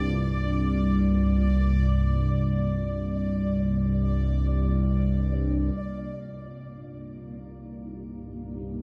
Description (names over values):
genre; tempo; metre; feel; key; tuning
dark ambient drone; free time; none; none; C minor; A4 = 441 Hz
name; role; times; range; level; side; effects
granular cloud pad; sustained chords; 0.1-8.8 s; C3 to D5; -42 LUFS; equal; built-in reverb, shimmer reverb
analog drone; drone; 0.0-8.8 s; C2 to G2; -27 LUFS; equal; chorus, phaser
bubbling stepped-filter texture; texture; 0.0-5.8 s; D5; -40 LUFS; equal; chorus, built-in reverb, shimmer reverb
room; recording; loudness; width
wet cathedral reverb, RT60 6.5 s; none; -25 LUFS; mono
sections
0.0-5.8 A section; 5.8-8.8 B section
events
none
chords
0.0 Bb/C; 5.8 Cm7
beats
free time